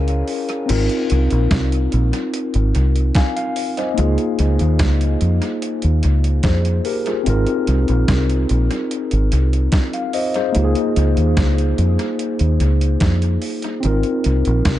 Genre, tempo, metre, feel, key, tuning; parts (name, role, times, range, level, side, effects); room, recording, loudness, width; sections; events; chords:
lovers rock reggae; 73 BPM; 4/4; straight; A4 = 442 Hz
mellow tine electric piano; accompaniment; 0.0-14.8 s; Bb3 to Ab5; -20 LUFS; left 2 dB; medium stereo tremolo, dub echo
deep dub fingered electric bass; bass; 0.0-14.8 s; Ab1 to F2; -16 LUFS; equal
clean 12-bit digital drum machine; drums; 0.1-14.8 s; crash cymbal, hi-hat, kick drum, snare drum; -23 LUFS; equal; overdrive, dub echo
little or no reverb; dark, warm production, nothing above 10.5 kHz; -15 LUFS; side -14 dB against mid
0.7-14.8 A section
0.0 C7b9b13 (rootless); 0.7 Ab6; 4.0 Db6; 7.3 Ab6; 10.5 Db6; 13.8 Ab6